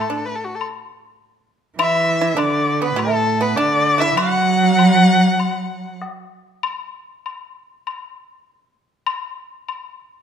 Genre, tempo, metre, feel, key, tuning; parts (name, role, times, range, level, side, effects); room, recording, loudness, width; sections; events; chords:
chinese traditional, Chinese chamber ensemble; 99 BPM; 4/4; rubato; A4 = 441 Hz
clear erhu; melody; 0.0-6.0 s; F#4 to F#5; -18 LUFS; left 3 dB
pipa; second line; 0.0-6.0 s; A3 to F#4; -23 LUFS; right 4 dB
rich cello; second line; 0.0-6.0 s; A2 to F#3; -19 LUFS; right 4 dB
woodblock; percussion; 0.0-9.8 s; -27 LUFS; left 7 dB
moderate recital hall reverb, RT60 1.3 s; close, detailed microphones; -15 LUFS; side -8 dB against mid
0.0-10.2 A section